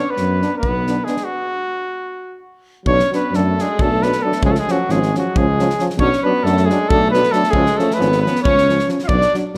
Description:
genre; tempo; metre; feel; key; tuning
balkan folk, Balkan brass band; 269 BPM (eighths); 7/8; straight; B dorian sharp4; A4 = 441 Hz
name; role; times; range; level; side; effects
clear flugelhorn; melody; 0.0-9.3 s; F#4 to E#5; -22 LUFS; equal; none
clear alto saxophone; second line; 0.0-9.3 s; F#3 to E#4; -25 LUFS; equal; none
warm euphonium; accompaniment; 0.0-9.6 s; E#3 to B3; -28 LUFS; equal; none
warm trombone; accompaniment; 0.0-9.6 s; C#4 to D4; -27 LUFS; equal; none
mellow tuba; bass; 0.2-9.6 s; G#1 to F#2; -23 LUFS; equal; none
natural country drum kit; percussion; 0.2-9.6 s; kick drum, snare drum; -26 LUFS; equal; none
room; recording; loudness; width
wet recital hall reverb, RT60 1.9 s; none; -17 LUFS; mono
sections
0.0-2.9 A section; 2.9-9.6 B section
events
stop 1.3-2.9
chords
0.0 Bm; 1.3 N.C.; 2.9 Bm; 4.4 C#; 6.0 Bm; 7.5 C#

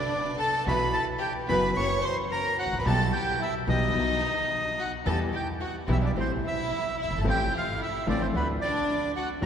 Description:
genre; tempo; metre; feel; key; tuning
tango; 110 BPM; 4/4; rubato; E minor; A4 = 439 Hz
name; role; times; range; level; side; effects
bandoneon; melody; 0.0-9.5 s; B4 to C#6; -29 LUFS; right 1 dB; none
rich chamber violin section; second line; 0.0-9.5 s; B3 to C#5; -32 LUFS; left 1 dB; none
warm concert grand piano; accompaniment; 0.7-9.5 s; F#1 to A4; -31 LUFS; left 2 dB; none
dark chamber string section; stabs; 0.7-9.5 s; A3 to G4; -39 LUFS; right 2 dB; none
upright bass; bass; 0.7-9.5 s; F#1 to E2; -33 LUFS; right 1 dB; none
room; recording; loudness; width
wet cathedral reverb, RT60 4.2 s; recorded in a church or concert hall; -24 LUFS; side -8 dB against mid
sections
0.0-9.5 A section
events
none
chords
0.0 Bm7 (rootless); 0.7 Bsus4; 1.8 F#; 2.9 Em/B; 4.0 B; 5.1 Em; 6.2 Am7; 7.2 F/A; 8.3 D

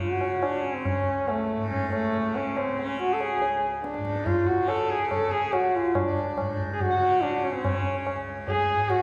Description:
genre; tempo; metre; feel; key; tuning
indian classical, Hindustani; 141 BPM; 4/4; straight; unclear; A4 = 438 Hz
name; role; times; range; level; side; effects
dark sarangi; melody; 0.0-9.0 s; A3 to A4; -28 LUFS; equal; none
tanpura; drone; 0.0-9.0 s; C#2 to C#3; -37 LUFS; equal; none
tabla; percussion; 0.2-9.0 s; none; -33 LUFS; equal; none
hand-pumped harmonium; second line; 6.1-9.0 s; C#4 to G#4; -38 LUFS; equal; none
room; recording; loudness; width
wet recital hall reverb, RT60 1.6 s; recorded in a church or concert hall; -26 LUFS; mono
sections
0.0-9.0 A section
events
none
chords
none

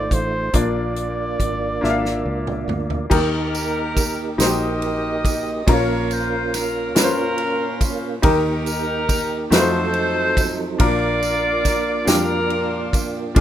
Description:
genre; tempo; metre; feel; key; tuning
slow gospel; 47 BPM (dotted quarters); 6/8; straight; Eb major; A4 = 441 Hz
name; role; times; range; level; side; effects
breathy trumpet; melody; 0.0-2.7 s; C5 to D5; -26 LUFS; right 1 dB; plate reverb
bright baby grand piano; accompaniment; 0.0-13.4 s; Bb2 to F5; -24 LUFS; left 3 dB; plate reverb
mellow tonewheel organ; sustained chords; 0.0-13.4 s; F3 to D5; -26 LUFS; right 4 dB; slow rotary speaker, chorus vibrato, plate reverb
fingered electric bass; bass; 0.0-13.4 s; Ab1 to F2; -27 LUFS; equal; none
natural country drum kit; drums; 0.1-13.4 s; crash cymbal, hi-hat, kick drum, ride cymbal, snare drum, toms; -21 LUFS; equal; none
clear saxophone section; melody; 3.1-13.4 s; Db4 to Eb5; -23 LUFS; equal; plate reverb
tambourine; percussion; 3.5-13.3 s; none; -29 LUFS; right 5 dB; none
room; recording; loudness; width
moderate studio reverb, RT60 0.5 s; rough home demo mix; -18 LUFS; side -11 dB against mid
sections
0.0-3.1 A section; 3.1-13.4 B section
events
drum fill 1.8-3.1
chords
0.0 F7; 0.5 Bb; 3.1 Eb; 5.7 Bbm; 8.2 Eb; 9.5 F7b9; 10.8 Bb

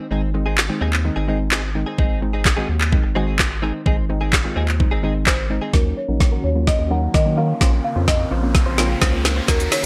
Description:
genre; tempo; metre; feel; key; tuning
dance-pop; 128 BPM; 4/4; straight; Eb dorian; A4 = 439 Hz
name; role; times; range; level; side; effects
direct-recorded clean electric guitar; riff; 0.0-9.9 s; C4 to C5; -31 LUFS; equal; analog chorus, low-pass filter
soft round pluck; accompaniment; 0.1-9.9 s; Eb3 to Gb4; -29 LUFS; equal; chorus, sidechain pumping, low-pass filter
round analog bass; bass; 0.1-9.9 s; Ab1 to Eb3; -24 LUFS; equal; sidechain pumping
smooth R&B drum kit; drums; 0.6-9.8 s; handclaps, hi-hat, kick drum, shaker, snare drum; -20 LUFS; equal; gated reverb
folk marimba with hard mallets; melody; 5.3-9.9 s; Bb4 to Gb5; -28 LUFS; equal; low-pass filter, delay
sweeping resonant pad; sustained chords; 5.7-9.9 s; Db3 to Gb4; -31 LUFS; equal; lush chorus, sidechain pumping, low-pass filter
riser; sound effects; 6.9-9.9 s; none; -34 LUFS; equal; none
room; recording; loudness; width
light reverb; bright 1980s-style digital production; -19 LUFS; mono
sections
0.0-5.7 A section; 5.7-9.9 B section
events
build-up 5.7-9.9; drum fill 5.7-9.9; filter sweep 5.7-9.9; riser 6.9-9.9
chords
0.0 Ab; 5.7 Ebm7; 7.6 Bbmadd9

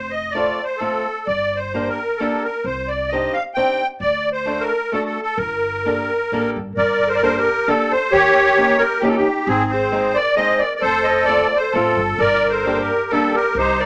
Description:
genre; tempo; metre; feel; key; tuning
musette waltz; 132 BPM; 3/4; straight; G minor; A4 = 440 Hz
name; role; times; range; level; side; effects
musette accordion; melody; 0.0-13.9 s; C4 to G5; -20 LUFS; equal; none
upright bass; bass; 0.0-13.9 s; F1 to Eb2; -32 LUFS; equal; none
fingerpicked swing-style acoustic guitar; accompaniment; 0.3-13.4 s; G3 to Bb4; -24 LUFS; equal; none
breathy clarinet; second line; 6.7-13.9 s; D4 to C5; -28 LUFS; equal; none
room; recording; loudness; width
moderate small room reverb, RT60 0.5 s; none; -19 LUFS; mono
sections
0.0-6.8 A section; 6.8-13.9 A section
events
none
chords
0.0 F; 1.3 Gm; 2.7 Cmadd9; 4.0 D; 5.4 Gmadd9; 8.1 Eb7; 9.5 Ab; 10.8 F; 12.2 Gm

